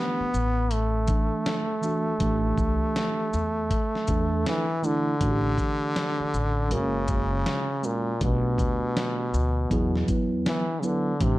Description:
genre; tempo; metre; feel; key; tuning
hip hop, jazz-hop; 80 BPM; 4/4; swing 63% on 16ths; unclear; A4 = 438 Hz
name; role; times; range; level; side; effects
brilliant trombone; melody; 0.0-11.4 s; A#2 to B3; -27 LUFS; equal; none
mellow tine electric piano; accompaniment; 0.0-11.4 s; E3 to E5; -29 LUFS; right 2 dB; phaser
upright bass; bass; 0.2-11.4 s; F#1 to E2; -27 LUFS; equal; none
dusty soul sampler-style drum kit; drums; 0.3-11.4 s; hi-hat, kick drum, shaker, snare drum; -29 LUFS; equal; none
room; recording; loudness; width
digital ambience; dark, warm production; -23 LUFS; side -17 dB against mid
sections
0.0-5.2 A section; 5.2-11.4 A section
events
tine electric piano fill 4.1-5.2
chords
0.0 A7(no3); 5.2 A5; 6.7 F#; 8.2 Gadd9/B; 9.7 E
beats
0.71 1.46 | 2.21 2.96 3.71 4.46 | 5.21 5.96 6.71 7.46 | 8.21 8.96 9.71 10.46 | 11.21

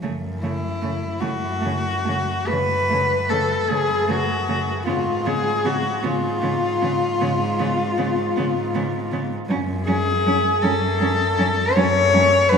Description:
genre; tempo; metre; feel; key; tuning
classical, lyrical piece for cello ensemble; 45-54 BPM (dotted quarters); 12/8; rubato; F# minor; A4 = 444 Hz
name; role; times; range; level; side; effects
warm cello; second line; 0.0-12.6 s; A3 to C#4; -28 LUFS; right 4 dB; none
dark cello; accompaniment; 0.0-12.6 s; C#3 to F#3; -28 LUFS; right 1 dB; none
warm cello; bass; 0.0-12.6 s; F#2 to G#2; -27 LUFS; right 1 dB; none
warm cello; melody; 0.4-12.6 s; E4 to C#5; -20 LUFS; left 3 dB; none
room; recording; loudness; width
wet cathedral reverb, RT60 5.2 s; in a vast, echoing space, studio reverb; -19 LUFS; side -6 dB against mid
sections
0.0-12.6 A section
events
none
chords
0.0 F#m; 4.9 C#/G#; 9.5 F#m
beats
| 0.04 1.22 2.50 3.69 | 4.88 6.03 7.21 8.37 | 9.50 10.62 11.76

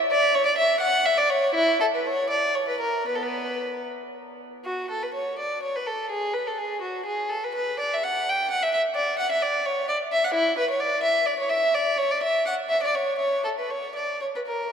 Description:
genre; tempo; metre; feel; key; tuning
classical, baroque-style suite movement for unaccompanied violin; 73-88 BPM (dotted quarters); 6/8; rubato; B minor, F# minor from 4.7 s; A4 = 439 Hz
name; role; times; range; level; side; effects
warm violin; solo; 0.1-14.7 s; B3 to G5; -22 LUFS; equal; none
room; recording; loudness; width
wet cathedral reverb, RT60 5.1 s; none; -22 LUFS; side -7 dB against mid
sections
0.0-4.7 A section; 4.7-14.7 A section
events
none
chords
none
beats
| 0.12 0.81 | 1.56 2.30 | 3.07 3.86 | 4.66 5.39 | 6.10 6.82 | 7.56 8.28 | 8.96 9.65 | 10.34 11.04 | 11.74 12.46 | 13.20 13.94

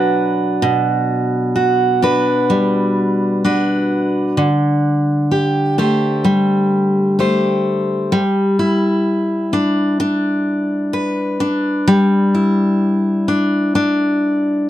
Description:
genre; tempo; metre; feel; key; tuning
pop; 64 BPM; 4/4; straight; G major; A4 = 442 Hz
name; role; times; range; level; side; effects
picked steel-string acoustic guitar; solo; 0.0-14.7 s; B2 to C5; -14 LUFS; equal; none
room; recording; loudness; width
moderate studio reverb, RT60 0.6 s; dry, close 1970s-style studio recording; -14 LUFS; side -13 dB against mid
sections
0.0-8.1 A section; 8.1-14.7 B section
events
none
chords
0.0 Bm; 0.6 Gmaj7/B; 4.4 D7sus4; 8.1 G6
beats
| 0.62 1.56 2.50 3.44 | 4.37 5.31 6.25 7.19 | 8.12 9.06 10.00 10.94 | 11.87 12.81 13.75 14.69

